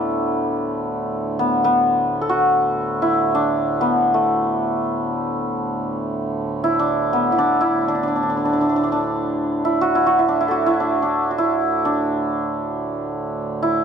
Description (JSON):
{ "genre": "indian classical, Hindustani", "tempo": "free time", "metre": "none", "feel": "none", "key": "D raga bhupali", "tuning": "A4 = 440 Hz", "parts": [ { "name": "santur", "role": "melody", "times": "0.0-13.8 s", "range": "A3 to A4", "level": "-18 LUFS", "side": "equal", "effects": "none" }, { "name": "hand-pumped harmonium", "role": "drone", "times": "0.0-13.8 s", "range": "D2 to A2", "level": "-27 LUFS", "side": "right 3 dB", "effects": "none" } ], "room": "light reverb", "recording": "dark, warm production", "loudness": "-18 LUFS", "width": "side -7 dB against mid", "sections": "0.0-13.8 A section", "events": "none", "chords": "none", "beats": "free time" }